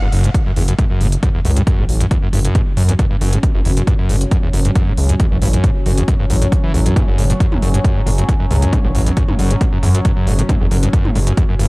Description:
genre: driving peak-time techno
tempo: 136 BPM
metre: 4/4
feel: straight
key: F# phrygian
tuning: A4 = 440 Hz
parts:
  - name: screaming distorted acid line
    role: riff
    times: 0.0-11.7 s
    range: E2 to E3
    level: -19 LUFS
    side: equal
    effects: distortion, analog chorus, sidechain pumping, tape echo
  - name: gritty driven synth bass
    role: bass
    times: 0.0-11.7 s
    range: F#1 to F#2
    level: -16 LUFS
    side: equal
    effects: sidechain pumping
  - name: analog drone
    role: drone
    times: 1.4-11.7 s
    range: F#3 to C#4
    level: -25 LUFS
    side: equal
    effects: chorus, sidechain pumping
  - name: techno drum kit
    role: drums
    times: 0.1-11.7 s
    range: hi-hat, toms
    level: -26 LUFS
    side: equal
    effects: none
  - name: electronic kick drum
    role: drums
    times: 0.3-11.5 s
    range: none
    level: -16 LUFS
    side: equal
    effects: none
room: little or no reverb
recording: dry, gritty hardware recording, cassette tape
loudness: -13 LUFS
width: side -24 dB against mid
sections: 0.0-11.7 A section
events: none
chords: 0.0 F#m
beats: 0.34 0.79 1.23 | 1.67 2.11 2.55 2.99 | 3.43 3.87 4.32 4.76 | 5.20 5.64 6.08 6.52 | 6.96 7.40 7.84 8.29 | 8.73 9.17 9.61 10.05 | 10.49 10.93 11.37

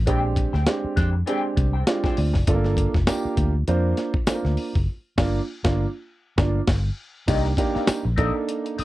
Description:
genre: funk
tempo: 100 BPM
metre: 4/4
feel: swing 56% on 16ths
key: C minor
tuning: A4 = 440 Hz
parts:
  - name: vintage muted fingered electric bass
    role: bass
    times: 0.0-8.8 s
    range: F1 to F2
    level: -23 LUFS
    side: equal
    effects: none
  - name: clean electric guitar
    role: accompaniment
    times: 0.1-2.4, 7.3-8.8 s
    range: C4 to G5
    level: -30 LUFS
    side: left 6 dB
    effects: wah
  - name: dark upright piano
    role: stabs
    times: 0.1-8.8 s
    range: Ab3 to D5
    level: -26 LUFS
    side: right 3 dB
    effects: none
  - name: breakbeat sampler-style drum kit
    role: drums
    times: 0.1-8.8 s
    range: crash cymbal, hi-hat, kick drum, snare drum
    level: -24 LUFS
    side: equal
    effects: none
  - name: tambourine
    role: percussion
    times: 3.1-8.0 s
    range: none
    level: -41 LUFS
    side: left 5 dB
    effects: none
room: little or no reverb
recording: dry, close 1970s-style studio recording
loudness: -20 LUFS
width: side -16 dB against mid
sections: 0.0-7.3 A section; 7.3-8.8 B section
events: upright piano fill 1.6-2.5; band accent 4.9-7.3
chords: 0.1 Bb13; 2.5 Gm7; 7.3 Cm7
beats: | 0.08 0.68 1.28 1.88 | 2.48 3.08 3.68 4.28 | 4.88 5.48 6.08 6.68 | 7.28 7.88 8.48

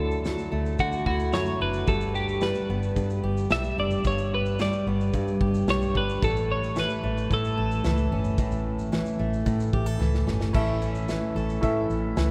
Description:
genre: acoustic pop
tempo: 111 BPM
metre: 4/4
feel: straight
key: unclear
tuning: A4 = 440 Hz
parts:
  - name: twelve-string electric guitar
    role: melody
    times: 0.0-10.0 s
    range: F#4 to E5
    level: -32 LUFS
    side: equal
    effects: none
  - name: fingerpicked steel-string acoustic guitar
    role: accompaniment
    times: 0.0-12.3 s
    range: G2 to A4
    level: -31 LUFS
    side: equal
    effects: none
  - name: vintage muted fingered electric bass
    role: bass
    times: 0.0-12.3 s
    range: F#1 to D3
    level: -31 LUFS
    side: equal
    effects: none
  - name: modern studio drum kit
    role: drums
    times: 0.1-12.3 s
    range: crash cymbal, kick drum, shaker, snare drum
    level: -34 LUFS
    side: equal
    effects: none
  - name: clear concert grand piano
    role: accompaniment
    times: 10.5-12.3 s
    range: C#4 to E5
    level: -31 LUFS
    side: equal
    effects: none
room: wet cathedral reverb, RT60 5.4 s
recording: recorded in a church or concert hall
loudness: -26 LUFS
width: mono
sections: 0.0-10.5 A section; 10.5-12.3 B section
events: drum fill 10.0-10.5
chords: 0.0 Dadd9; 1.9 G; 6.2 A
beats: 0.26 0.80 1.34 | 1.89 2.43 2.97 3.51 | 4.05 4.59 5.14 5.68 | 6.22 6.76 7.30 7.84 | 8.38 8.92 9.46 10.01 | 10.55 11.09 11.63 12.17

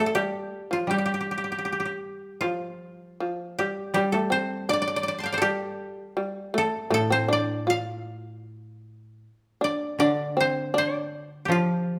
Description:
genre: japanese traditional, Japanese chamber music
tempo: 80 BPM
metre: 2/4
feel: rubato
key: G suspended pentatonic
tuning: A4 = 441 Hz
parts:
  - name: koto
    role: melody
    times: 0.0-12.0 s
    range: F4 to C6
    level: -30 LUFS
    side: equal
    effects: none
  - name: shamisen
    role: second line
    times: 0.0-12.0 s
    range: F3 to F4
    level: -30 LUFS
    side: equal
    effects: none
  - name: koto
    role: accompaniment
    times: 0.9-12.0 s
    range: A2 to G3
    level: -32 LUFS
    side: equal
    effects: none
room: moderate recital hall reverb, RT60 1.4 s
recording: none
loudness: -26 LUFS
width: mono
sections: 0.0-2.4 A section; 2.4-12.0 B section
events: none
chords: none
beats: 0.14 | 0.89 1.65 | 2.42 3.21 | 3.95 4.68 | 5.42 6.18 | 6.93 7.69 | 8.48 9.25 | 10.01 10.76 | 11.51

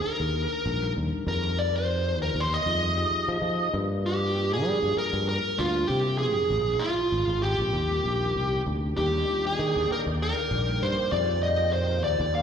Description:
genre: jazz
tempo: 98 BPM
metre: 4/4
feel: straight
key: Eb major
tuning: A4 = 440 Hz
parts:
  - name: smooth overdriven lead guitar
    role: melody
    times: 0.0-12.4 s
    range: F4 to F5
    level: -26 LUFS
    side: equal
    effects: slapback echo
  - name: bell-like tine electric piano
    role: accompaniment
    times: 0.0-12.3 s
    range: Eb3 to C5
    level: -36 LUFS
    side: left 2 dB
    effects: phaser, slapback echo
  - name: sustaining fretless electric bass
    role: bass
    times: 0.0-12.4 s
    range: Ab1 to G3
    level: -28 LUFS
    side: equal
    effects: none
  - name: analog string pad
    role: sustained chords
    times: 9.0-12.4 s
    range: Bb2 to G5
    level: -36 LUFS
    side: equal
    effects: ensemble chorus
room: light reverb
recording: live gig heard through the venue's PA, recital hall reverb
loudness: -24 LUFS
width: side -7 dB against mid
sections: 0.0-9.0 A section; 9.0-12.4 A section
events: none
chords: 0.0 Ebmaj7; 1.3 Fm11; 3.7 Gm7; 6.5 Bb7(no3); 7.7 Eb6; 9.0 Ebmaj7; 11.1 Fm11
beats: 0.35 0.96 | 1.58 2.19 2.81 3.42 | 4.04 4.66 5.27 5.89 | 6.50 7.12 7.73 8.35 | 8.96 9.58 10.19 10.81 | 11.43 12.04

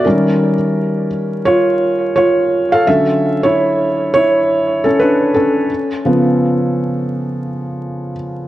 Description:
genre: hip hop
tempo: 85 BPM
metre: 4/4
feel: swing 57% on 16ths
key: unclear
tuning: A4 = 440 Hz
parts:
  - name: felt-muted upright piano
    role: solo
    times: 0.0-8.5 s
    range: C#3 to E#5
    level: -13 LUFS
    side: equal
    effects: low-pass filter, analog delay
room: moderate plate reverb, RT60 2.5 s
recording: vinyl crackle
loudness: -12 LUFS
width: side -14 dB against mid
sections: 0.0-8.5 A section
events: felt piano solo 0.0-8.5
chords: 0.0 D#9; 2.9 Dmaj9; 5.7 C#aug7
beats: | 0.05 0.75 1.46 2.17 | 2.87 3.58 4.28 4.99 | 5.70 6.40 7.11 7.81

